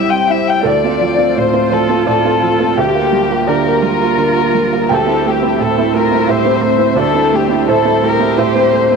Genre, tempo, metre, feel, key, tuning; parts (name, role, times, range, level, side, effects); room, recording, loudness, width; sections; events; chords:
neoclassical piano and strings; 86 BPM; 3/4; rubato; D minor; A4 = 440 Hz
warm chamber violin section; melody; 0.0-9.0 s; G4 to G5; -15 LUFS; left 7 dB; tape echo
felt-muted upright piano; accompaniment; 0.0-9.0 s; C2 to G5; -14 LUFS; right 8 dB
warm chamber string section; sustained chords; 0.0-9.0 s; G3 to E5; -23 LUFS; left 12 dB
vibraphone with hard mallets; arpeggios; 0.0-0.6 s; C4 to C5; -24 LUFS; left 15 dB; tape echo
dark cello; second line; 1.4-9.0 s; C4 to G4; -22 LUFS; right 9 dB
moderate echo chamber reverb, RT60 2.3 s; 1960s-style stereo with parts hard left and right; -11 LUFS; side -5 dB against mid
0.7-9.0 A section
0.0 C; 0.7 Dm7; 2.8 Gm7/D; 4.9 C6/D